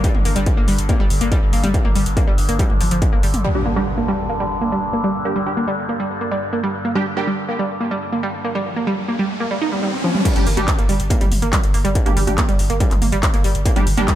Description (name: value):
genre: driving peak-time techno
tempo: 141 BPM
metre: 4/4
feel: straight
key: G minor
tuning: A4 = 439 Hz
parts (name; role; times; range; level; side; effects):
- analog pluck; riff; 0.0-14.1 s; F3 to Eb4; -22 LUFS; right 1 dB; chorus, overdrive, sidechain pumping, ping-pong delay
- saturated sub bass; bass; 0.0-3.4, 10.4-14.1 s; G1; -21 LUFS; equal; tube saturation, sidechain pumping, low-pass filter
- overtone-sweeping drone; drone; 0.0-8.6 s; G2 to D3; -27 LUFS; left 1 dB; chorus, built-in reverb, sidechain pumping
- electronic kick drum; drums; 0.0-3.1, 10.3-14.2 s; none; -17 LUFS; equal; distortion
- techno drum kit; drums; 0.0-3.4, 10.0-14.2 s; crash cymbal, handclaps, hi-hat, toms; -24 LUFS; left 1 dB; sidechain pumping on hats, low-pass filter on hats, sidechain pumping on toms, low-pass filter on toms, sidechain pumping on cymbals, low-pass filter on cymbals, low-pass filter on snare
- impact and riser; sound effects; 3.4-10.3 s; none; -26 LUFS; left 1 dB; none
- rave stab; stabs; 3.5-7.3, 10.4-14.1 s; G3 to G4; -26 LUFS; right 2 dB; chorus, built-in reverb, sidechain pumping, tape echo
room: light reverb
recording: none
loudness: -16 LUFS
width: side -12 dB against mid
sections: 0.0-3.4 A section; 3.4-10.3 B section; 10.3-14.2 C section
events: impact 3.4-5.1; filter sweep on synth arpeggio sound 3.4-10.3; riser 8.1-10.3; drum fill 10.0; drop 10.3-14.2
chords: 0.0 G5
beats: | 0.04 0.47 0.89 1.32 | 1.74 2.17 2.59 3.02 | 3.44 3.87 4.29 4.72 | 5.15 5.57 6.00 6.42 | 6.85 7.27 7.70 8.12 | 8.55 8.98 9.40 9.83 | 10.25 10.68 11.10 11.53 | 11.95 12.38 12.81 13.23 | 13.66 14.08